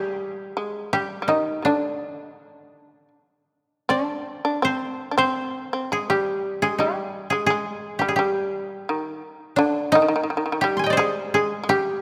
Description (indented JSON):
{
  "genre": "japanese traditional, Japanese chamber music",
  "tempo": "83 BPM",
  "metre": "4/4",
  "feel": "uneven beats, rubato",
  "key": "unclear",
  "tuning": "A4 = 440 Hz",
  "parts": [
    { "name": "koto", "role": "melody", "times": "0.0-12.0 s", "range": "D4 to C6", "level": "-25 LUFS", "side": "equal", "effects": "none" },
    { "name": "shamisen", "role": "second line", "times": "0.0-12.0 s", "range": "C3 to D4", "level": "-28 LUFS", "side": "equal", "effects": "none" }
  ],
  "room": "moderate concert hall reverb, RT60 2.4 s",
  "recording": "none",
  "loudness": "-24 LUFS",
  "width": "mono",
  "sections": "0.0-12.0 A section",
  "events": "none",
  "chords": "none"
}